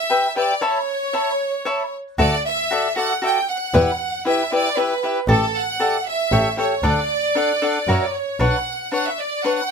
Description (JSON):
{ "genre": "mexican folk, mariachi", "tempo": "116 BPM", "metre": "3/4", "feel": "straight", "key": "D major", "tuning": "A4 = 442 Hz", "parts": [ { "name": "clear studio violin section", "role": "melody", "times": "0.0-9.7 s", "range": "A4 to G5", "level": "-21 LUFS", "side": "right 2 dB", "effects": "none" }, { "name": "cavaquinho", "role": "accompaniment", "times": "0.1-9.6 s", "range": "D4 to B5", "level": "-20 LUFS", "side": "left 2 dB", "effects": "none" }, { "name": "rich double bass", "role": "bass", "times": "2.2-8.5 s", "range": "A1 to F#2", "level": "-20 LUFS", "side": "right 1 dB", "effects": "none" } ], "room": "light reverb", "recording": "close, detailed microphones", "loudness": "-18 LUFS", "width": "side -6 dB against mid", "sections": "0.0-8.4 A section; 8.4-9.7 B section", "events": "none", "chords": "0.0 Em; 0.6 Aadd9; 2.2 Dadd9; 3.7 Em; 5.3 A7sus4; 6.3 A7; 6.8 D; 7.9 F#7; 8.4 Bmadd9", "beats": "0.10 | 0.62 1.14 1.66 | 2.19 2.71 3.23 | 3.75 4.26 4.78 | 5.29 5.81 6.32 | 6.84 7.36 7.88 | 8.40 8.92 9.44" }